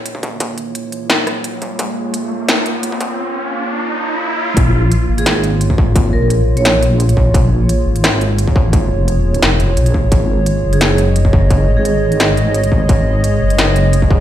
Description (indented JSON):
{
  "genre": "half-time drum and bass",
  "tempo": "173 BPM",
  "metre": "4/4",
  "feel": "half-time",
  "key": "Bb minor",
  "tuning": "A4 = 440 Hz",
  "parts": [
    { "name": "dark analog pad", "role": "sustained chords", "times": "0.0-14.2 s", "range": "Ab3 to Eb5", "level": "-20 LUFS", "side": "right 1 dB", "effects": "chorus, sidechain pumping" },
    { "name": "riser", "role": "sound effects", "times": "0.0-4.6 s", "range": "none", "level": "-22 LUFS", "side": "equal", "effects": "none" },
    { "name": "electronic kick drum", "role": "drums", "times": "0.1-14.2 s", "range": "none", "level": "-15 LUFS", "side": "equal", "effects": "distortion, overdrive, high-pass filter on kick" },
    { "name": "industrial drum kit", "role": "drums", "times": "0.1-14.0 s", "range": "hi-hat, rim click, snare drum", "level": "-17 LUFS", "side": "equal", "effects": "overdrive" },
    { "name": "deep soft wobble bass", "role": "bass", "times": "4.6-14.2 s", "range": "F1 to Bb1", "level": "-14 LUFS", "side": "equal", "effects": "chorus, tube saturation" },
    { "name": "vibraphone with medium mallets", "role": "melody", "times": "5.2-6.7, 10.7-12.3 s", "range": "Ab4 to Db5", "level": "-21 LUFS", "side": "right 2 dB", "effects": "digital delay" }
  ],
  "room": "light reverb, digital ambience",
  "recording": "played on a big sound system in a bare room, stone room reverb, high-pass filter",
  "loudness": "-12 LUFS",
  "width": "side -12 dB against mid",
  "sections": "0.0-4.6 A section; 4.6-14.2 B section",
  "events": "build-up 0.0-4.6; riser 0.0-4.6; filter sweep 0.0-4.6; drop 4.6-14.2",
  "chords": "0.0 Bbm7; 10.1 Absus4",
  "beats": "0.06 | 0.41 0.75 1.10 1.45 | 1.79 2.14 2.49 2.83 | 3.18 3.53 3.88 4.22 | 4.57 4.92 5.26 5.61 | 5.96 6.30 6.65 7.00 | 7.34 7.69 8.04 8.38 | 8.73 9.08 9.42 9.77 | 10.12 10.46 10.81 11.16 | 11.51 11.85 12.20 12.54 | 12.89 13.24 13.59 13.93"
}